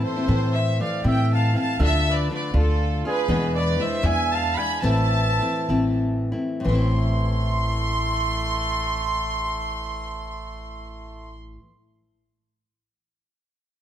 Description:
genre	mexican folk, mariachi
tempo	59-82 BPM (dotted quarters)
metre	6/8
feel	rubato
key	A minor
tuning	A4 = 440 Hz
part	warm chamber violin section	melody	0.0-11.3 s	A4 to C6	-26 LUFS	right 1 dB	none
part	mellow trumpet	second line	0.0-11.4 s	A3 to G#5	-32 LUFS	right 4 dB	none
part	nylon-string guitar	accompaniment	0.0-11.7 s	E2 to F4	-26 LUFS	left 2 dB	none
part	upright bass	bass	0.3-11.6 s	A1 to A2	-24 LUFS	equal	none
room	light reverb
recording	close, detailed microphones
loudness	-20 LUFS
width	side -10 dB against mid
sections	0.3-6.6 A section; 6.6-10.6 B section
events	slowing down 3.3-6.6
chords	0.3 Am; 1.8 Dm; 3.3 E7; 4.8 Am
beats	| 0.28 1.04 | 1.79 2.54 | 3.27 4.03 | 4.82 5.69 | 6.65 7.65 | 8.63 9.61

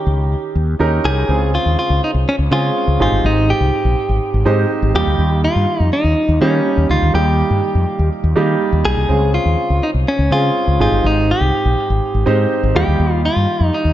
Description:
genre	1980s-style pop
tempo	123 BPM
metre	4/4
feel	straight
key	unclear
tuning	A4 = 440 Hz
part	direct-recorded clean electric guitar	melody	0.0-13.9 s	Db4 to Ab4	-18 LUFS	equal	digital delay
part	warm grand piano	accompaniment	0.0-13.9 s	Ab2 to C5	-20 LUFS	right 3 dB	none
part	mellow fretless electric bass	bass	0.1-13.9 s	G1 to Eb3	-16 LUFS	equal	none
room	moderate plate reverb, RT60 2.2 s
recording	dark, warm production, nothing above 7.7 kHz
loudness	-13 LUFS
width	side -12 dB against mid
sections	0.0-1.3 A section; 1.3-13.9 B section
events	none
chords	0.0 Eb7; 1.3 Dbmaj7; 3.0 Abmaj7; 4.9 Ebadd9; 9.1 Dbmaj7; 10.8 Abmaj7; 12.8 Ebadd9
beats	0.31 0.80 | 1.29 1.78 2.26 2.75 | 3.24 3.73 4.21 4.70 | 5.19 5.68 6.17 6.65 | 7.14 7.63 8.12 8.61 | 9.09 9.58 10.07 10.56 | 11.04 11.53 12.02 12.51 | 13.00 13.48

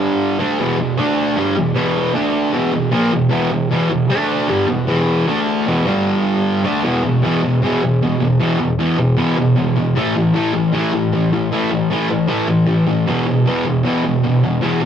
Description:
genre	rock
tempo	154 BPM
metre	4/4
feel	straight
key	unclear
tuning	A4 = 440 Hz
part	fuzz guitar	solo	0.0-14.9 s	E2 to D4	-14 LUFS	equal	distortion, tape echo
room	wet booth ambience, RT60 0.2 s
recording	rough rehearsal-room recording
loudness	-14 LUFS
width	side -8 dB against mid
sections	0.0-6.8 A section; 6.8-14.9 B section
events	none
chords	0.4 E5; 1.0 D5; 1.4 E5; 2.1 D5; 2.5 E5; 4.1 D5; 4.5 E5; 5.3 D5; 5.7 E5; 5.9 G5; 6.6 D5; 6.8 E5; 10.0 A5; 13.1 E5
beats	0.20 | 0.59 0.98 1.37 1.76 | 2.15 2.54 2.93 3.32 | 3.71 4.10 4.49 4.88 | 5.27 5.66 6.05 6.44 | 6.83 7.22 7.61 8.01 | 8.39 8.79 9.18 9.57 | 9.96 10.35 10.74 11.12 | 11.51 11.90 12.29 12.68 | 13.07 13.46 13.85 14.23 | 14.62

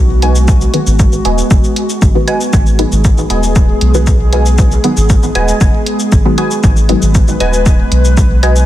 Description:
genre	dub techno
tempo	117 BPM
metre	4/4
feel	straight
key	G# minor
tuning	A4 = 444 Hz
part	airy breathy pad	sustained chords	0.0-8.7 s	G#3 to B4	-18 LUFS	equal	chorus, sidechain pumping
part	soft dub sub bass	bass	0.0-8.7 s	D#1 to B1	-12 LUFS	equal	sidechain pumping
part	filtered dub chord stab	riff	0.2-8.6 s	F#4 to G#5	-20 LUFS	right 1 dB	phaser, sidechain pumping, dub echo
part	electronic hi-hat and cabasa	drums	0.2-8.7 s	none	-22 LUFS	left 1 dB	none
part	electronic kick drum	drums	0.5-8.3 s	none	-10 LUFS	equal	none
part	filtered dub chord stab	stabs	0.7-8.0 s	D#3 to B3	-18 LUFS	left 1 dB	chorus, phaser, sidechain pumping, dub echo
room	digital ambience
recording	dense, heavily limited modern master, vinyl crackle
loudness	-8 LUFS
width	side -13 dB against mid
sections	0.0-8.7 A section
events	filter sweep on synth stab 0.0-8.7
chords	0.0 G#m7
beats	| 0.48 0.99 1.51 2.02 | 2.53 3.04 3.56 4.07 | 4.58 5.10 5.61 6.12 | 6.63 7.15 7.66 8.17

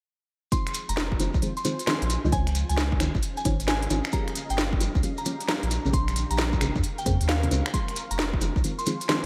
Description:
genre	UK garage, two-step garage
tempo	133 BPM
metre	4/4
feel	swing 65% on 16ths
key	F minor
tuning	A4 = 441 Hz
part	soft synth bell	melody	0.5-9.3 s	F5 to C6	-36 LUFS	equal	chorus, digital delay
part	deep mellow chord stab	stabs	0.5-9.2 s	Db4 to Eb5	-34 LUFS	equal	chorus, phaser
part	electronic kick drum	drums	0.5-8.6 s	none	-30 LUFS	equal	none
part	garage drum kit	drums	0.5-9.2 s	finger snaps, hi-hat, snare drum	-32 LUFS	equal	gated reverb
part	shekere	percussion	0.5-9.2 s	none	-41 LUFS	equal	none
part	granular cloud pad	texture	1.4-9.3 s	Db4 to Db6	-41 LUFS	equal	built-in reverb, ensemble chorus, sidechain pumping
part	soft dub sub bass	bass	0.9-9.3 s	F1 to F2	-29 LUFS	equal	none
room	little or no reverb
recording	bright 1980s-style digital production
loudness	-26 LUFS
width	mono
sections	0.5-9.3 A section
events	none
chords	0.5 Fm7; 2.3 Dbmaj9; 4.1 Gm7b5; 5.7 Bbm9; 7.7 Fm7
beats	| 0.52 0.97 1.42 1.87 | 2.33 2.78 3.23 3.68 | 4.13 4.58 5.03 5.48 | 5.93 6.38 6.84 7.29 | 7.74 8.19 8.64 9.09

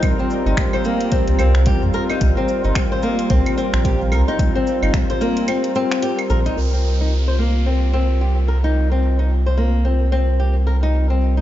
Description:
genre	organic downtempo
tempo	110 BPM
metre	4/4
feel	swing 59% on 16ths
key	C minor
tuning	A4 = 440 Hz
part	warm analog pad	sustained chords	0.0-11.4 s	G3 to Bb4	-24 LUFS	right 1 dB	lush chorus, sidechain pumping
part	flamenco guitar	arpeggios	0.0-11.4 s	Bb3 to C5	-22 LUFS	left 2 dB	low-pass filter, tape echo
part	deep house drum kit	drums	0.0-11.4 s	cabasa, claves, finger snaps, hi-hat	-28 LUFS	right 1 dB	overdrive, low-pass filter on perc, low-pass filter on snare, low-pass filter on hats
part	electronic kick drum	drums	0.0-5.1 s	none	-20 LUFS	equal	overdrive
part	bronze singing bowl	texture	0.0-11.4 s	G4 to Bb4	-36 LUFS	right 3 dB	none
part	warm sub bass	bass	0.5-11.4 s	G1 to F2	-17 LUFS	equal	sidechain pumping
part	downlifter	sound effects	6.6-10.9 s	none	-36 LUFS	right 2 dB	none
room	light reverb, digital ambience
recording	played on a big sound system in a bare room, large studio reverb, nothing above 7.5 kHz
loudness	-16 LUFS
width	side -13 dB against mid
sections	0.0-6.6 A section; 6.6-11.4 B section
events	kick drops out 5.5-6.6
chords	0.0 Cm7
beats	| 0.03 0.57 1.12 1.66 | 2.21 2.75 3.30 3.85 | 4.39 4.94 5.48 6.03 | 6.57 7.12 7.66 8.21 | 8.75 9.30 9.85 10.39 | 10.94

